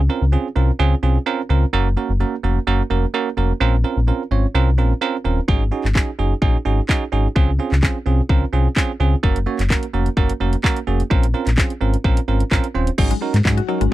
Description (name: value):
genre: dance-pop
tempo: 128 BPM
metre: 4/4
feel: straight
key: Bb minor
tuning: A4 = 440 Hz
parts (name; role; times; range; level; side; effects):
- sub bass with octave; bass; 0.0-13.9 s; Eb1 to Ab2; -17 LUFS; left 1 dB; sidechain pumping
- bell-like tine electric piano; accompaniment; 0.1-13.8 s; Bb3 to Db5; -22 LUFS; right 7 dB; sidechain pumping
- house drum kit; drums; 5.5-13.9 s; crash cymbal, handclaps, hi-hat, kick drum; -18 LUFS; left 1 dB; none
- glassy FM pad; sustained chords; 13.4-13.9 s; Ab3 to Gb4; -32 LUFS; left 6 dB; none
- mallet-like synth pluck; arpeggios; 13.0-13.9 s; Gb3 to Gb4; -25 LUFS; left 20 dB; chorus, sidechain pumping, slapback echo
room: little or no reverb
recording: dry, close 1970s-style studio recording, faint mains hum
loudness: -16 LUFS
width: side -15 dB against mid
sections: 0.0-13.0 A section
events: none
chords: 0.0 Dbmaj7; 1.7 Gb; 3.6 Bbmadd9; 5.5 Ab7sus4; 7.4 Dbmaj7; 9.2 Gb; 11.1 Bbmadd9; 13.0 Ab7sus4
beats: 0.33 0.80 1.26 | 1.73 2.20 2.67 3.14 | 3.61 4.08 4.55 5.01 | 5.48 5.95 6.42 6.89 | 7.36 7.83 8.30 8.77 | 9.23 9.70 10.17 10.64 | 11.11 11.58 12.05 12.52 | 12.98 13.45 13.92